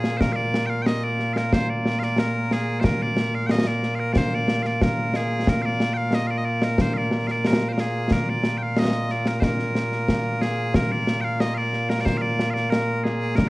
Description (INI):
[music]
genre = scottish traditional, Scottish pipe music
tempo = 91 BPM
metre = 2/4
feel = straight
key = Bb mixolydian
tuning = A4 = 440 Hz
[part]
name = loud bright bagpipes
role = melody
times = 0.0-13.5 s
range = Bb2 to G5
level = -23 LUFS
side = equal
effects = none
[part]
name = concert snare drum and concert bass drum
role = drums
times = 0.0-13.5 s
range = none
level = -24 LUFS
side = equal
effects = none
[sound]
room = moderate recital hall reverb, RT60 1.5 s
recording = worn, warbling old tape, cassette tape, warbly pitch drift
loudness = -20 LUFS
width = side -22 dB against mid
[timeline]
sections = 0.2-10.7 A section; 10.7-13.5 A section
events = none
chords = none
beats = | 0.20 0.85 | 1.51 2.17 | 2.83 3.49 | 4.15 4.81 | 5.47 6.13 | 6.79 7.45 | 8.11 8.77 | 9.43 10.09 | 10.74 11.40 | 12.06 12.72 | 13.38